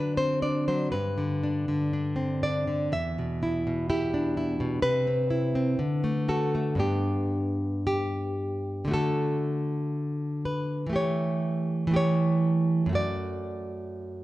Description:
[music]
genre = romantic piece for solo classical guitar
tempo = 55-64 BPM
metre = 2/4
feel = rubato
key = G major, D major from 8.9 s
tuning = A4 = 440 Hz
[part]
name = nylon-string guitar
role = solo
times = 0.0-14.2 s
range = E2 to E5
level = -25 LUFS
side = equal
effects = none
[sound]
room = moderate recital hall reverb, RT60 1.8 s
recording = dark, warm production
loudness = -25 LUFS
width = side -16 dB against mid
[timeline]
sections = 0.0-8.9 A section; 8.9-14.2 B section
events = none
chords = 0.0 D; 0.9 G; 2.9 Em; 4.8 Cmaj7; 5.8 D; 6.8 G; 8.9 D; 11.0 A7/E; 12.9 D/F#

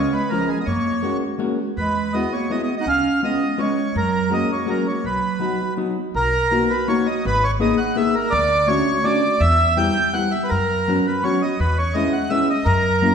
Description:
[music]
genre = musette waltz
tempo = 165 BPM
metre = 3/4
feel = straight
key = B major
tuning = A4 = 442 Hz
[part]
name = accordion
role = melody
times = 0.0-13.1 s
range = G#4 to G5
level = -21 LUFS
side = right 1 dB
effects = none
[part]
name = warm clarinet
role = second line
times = 0.0-5.7 s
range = E#3 to D#4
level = -25 LUFS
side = right 3 dB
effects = none
[part]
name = hollow-body jazz guitar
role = accompaniment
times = 0.0-13.1 s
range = F#3 to G#4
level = -22 LUFS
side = left 2 dB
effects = none
[part]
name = upright bass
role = bass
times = 0.0-13.1 s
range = G#1 to F#2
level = -24 LUFS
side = left 1 dB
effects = none
[sound]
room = wet recital hall reverb, RT60 1.6 s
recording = recorded in a church or concert hall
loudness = -17 LUFS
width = side -7 dB against mid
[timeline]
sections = 0.0-6.1 A section; 6.1-13.1 B section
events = none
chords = 0.0 C#7; 0.7 F#add9; 1.8 Eadd9; 2.9 C#7; 4.0 F#add9; 5.0 B; 6.1 Bmaj7; 7.2 G#madd9; 8.3 Dmaj7; 9.4 Em; 10.5 F#sus4; 11.6 E6

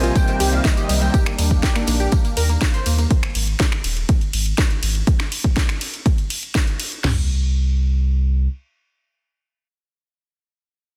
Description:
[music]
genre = progressive house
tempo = 122 BPM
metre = 4/4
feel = straight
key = unclear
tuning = A4 = 440 Hz
[part]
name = unison lead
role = melody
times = 0.0-1.1 s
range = Eb5 to Ab5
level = -30 LUFS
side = equal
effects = ensemble chorus, delay
[part]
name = filtered supersaw swell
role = sustained chords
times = 0.0-3.1 s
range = Eb3 to D4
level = -31 LUFS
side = equal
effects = sidechain pumping
[part]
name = unison pluck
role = arpeggios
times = 0.0-3.1 s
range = G3 to C5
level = -28 LUFS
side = equal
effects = sidechain pumping, digital delay
[part]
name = clear concert grand piano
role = stabs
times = 0.0-1.1 s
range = C3 to C5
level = -29 LUFS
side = equal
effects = sidechain pumping, digital delay
[part]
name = saturated sub bass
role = bass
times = 0.0-8.5 s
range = Eb1 to Eb2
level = -21 LUFS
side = equal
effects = sidechain pumping
[part]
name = house drum kit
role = drums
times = 0.0-7.0 s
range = finger snaps, hi-hat, ride cymbal, snare drum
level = -28 LUFS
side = equal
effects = overdrive, studio reverb
[part]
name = tambourine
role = percussion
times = 0.0-3.1 s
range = none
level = -35 LUFS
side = equal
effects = none
[part]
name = house drum kit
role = drums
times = 0.2-7.2 s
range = crash cymbal, kick drum, snare drum, toms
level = -21 LUFS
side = equal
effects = overdrive, studio reverb
[sound]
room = little or no reverb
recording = dense, heavily limited modern master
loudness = -19 LUFS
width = mono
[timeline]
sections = 0.0-7.0 A section; 7.0-11.0 B section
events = drop 0.0-7.0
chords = 0.0 Cm7; 1.1 Ebmaj7; 3.1 Ab5; 5.1 N.C.

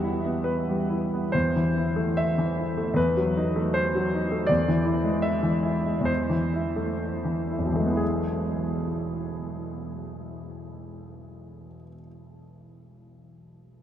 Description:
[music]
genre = classical, romantic character piece for solo piano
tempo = 56-82 BPM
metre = 2/4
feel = rubato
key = unclear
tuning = A4 = 441 Hz
[part]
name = clear grand piano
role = solo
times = 0.0-13.8 s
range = E1 to E5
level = -24 LUFS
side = equal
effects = none
[sound]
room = wet huge ambient reverb, RT60 8.5 s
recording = in a vast, echoing space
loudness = -23 LUFS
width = side -10 dB against mid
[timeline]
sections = 0.0-1.3 A section; 1.3-8.0 B section; 8.0-11.7 C section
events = slowing down 3.7-8.0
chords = 0.0 Em; 1.3 Am/E; 3.0 B7/E; 4.5 E7; 6.1 Am/E; 8.0 E

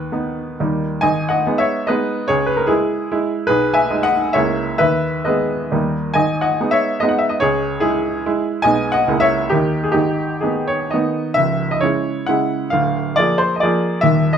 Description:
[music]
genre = classical, romantic triple-time dance for piano with dotted rhythms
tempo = 118-158 BPM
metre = 3/4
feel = rubato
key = G# minor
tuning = A4 = 440 Hz
[part]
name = bright baby grand piano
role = solo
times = 0.0-14.4 s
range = C#1 to G#5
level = -16 LUFS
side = equal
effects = none
[sound]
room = moderate large studio reverb, RT60 1.1 s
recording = none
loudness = -16 LUFS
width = side -8 dB against mid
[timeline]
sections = 0.0-1.0 A section; 1.0-11.4 A section; 11.4-14.4 B section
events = none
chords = 0.0 B/D#; 0.6 D#; 1.0 G#m; 2.3 C#m; 3.5 G#m/B; 4.3 A#m7b5/C#; 4.8 G#m/D#; 5.7 D#; 6.2 G#m; 7.4 C#m; 8.6 G#m/B; 9.1 A#m7b5/C#; 9.5 D#; 10.0 G#m; 11.4 C#m; 12.7 A#7/D

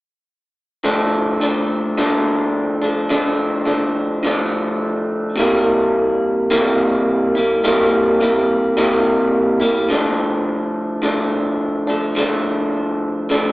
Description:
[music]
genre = indie pop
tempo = 106 BPM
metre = 4/4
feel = swing 55% on 16ths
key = D minor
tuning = A4 = 435 Hz
[part]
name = electric guitar through a small old amp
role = solo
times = 0.8-13.5 s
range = C3 to E4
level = -15 LUFS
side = equal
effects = warbly pitch drift
[sound]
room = wet large studio reverb, RT60 1.4 s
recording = band playing live in one room, AM radio sound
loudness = -15 LUFS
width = side -19 dB against mid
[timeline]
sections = 0.8-9.9 A section; 9.9-13.5 B section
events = none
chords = 0.8 Dm; 5.4 C7; 9.9 Dm

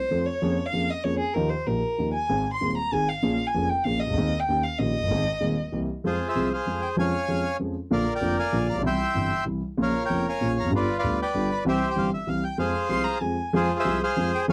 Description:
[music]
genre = tango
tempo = 192 BPM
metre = 3/4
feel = rubato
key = Ab major, F harmonic minor from 6.0 s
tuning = A4 = 439 Hz
[part]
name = dark violin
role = second line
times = 0.0-5.7, 12.9-13.5 s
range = Ab4 to C6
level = -30 LUFS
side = equal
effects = none
[part]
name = warm concert grand piano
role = accompaniment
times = 0.1-14.5 s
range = Eb1 to A4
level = -28 LUFS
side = equal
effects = none
[part]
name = bandoneon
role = melody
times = 6.1-14.5 s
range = F4 to C6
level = -28 LUFS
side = equal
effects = none
[sound]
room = light reverb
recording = dark, warm production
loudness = -26 LUFS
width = mono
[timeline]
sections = 0.0-6.0 A section; 6.0-13.5 B section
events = violin solo 0.0-6.0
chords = 0.4 Bbm7/F; 1.3 Ebadd9; 2.3 Ab; 3.2 Bbm7; 4.2 Ab/Eb; 4.5 Eb7; 5.1 Ab; 5.7 C7; 6.0 Fm; 7.0 Db/F; 7.9 Bb; 8.8 C; 9.8 Bbm; 10.7 G7; 11.7 C; 12.6 Fm

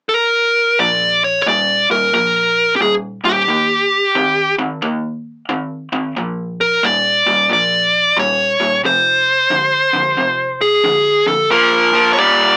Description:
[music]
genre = blues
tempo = 90 BPM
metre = 4/4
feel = swing 64% on 8ths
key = Bb mixolydian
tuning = A4 = 441 Hz
[part]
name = dark smooth lead guitar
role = melody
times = 0.1-12.6 s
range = G4 to D5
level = -15 LUFS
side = equal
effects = overdrive
[part]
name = cranked stack guitar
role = riff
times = 0.8-12.6 s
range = F2 to C4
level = -22 LUFS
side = equal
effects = overdrive
[sound]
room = light reverb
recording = small speaker sound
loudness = -15 LUFS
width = mono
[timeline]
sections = 0.8-11.5 A section; 11.5-12.6 B section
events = none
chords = 0.0 N.C.; 0.8 Bb5; 3.5 Eb; 6.2 Bb; 8.8 F5; 11.5 Bb6

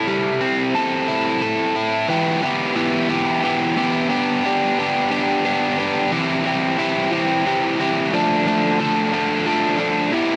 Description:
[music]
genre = rock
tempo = 60 BPM (dotted quarters)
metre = 6/8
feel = straight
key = unclear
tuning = A4 = 440 Hz
[part]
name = overdriven electric guitar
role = solo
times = 0.0-10.4 s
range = E3 to A4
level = -20 LUFS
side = equal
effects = none
[sound]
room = little or no reverb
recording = dry, close 1970s-style studio recording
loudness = -20 LUFS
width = mono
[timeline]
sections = 0.0-2.1 A section; 2.1-10.4 B section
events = none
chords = 0.0 Am7; 2.1 Em; 4.1 G; 6.1 C; 8.1 Dm

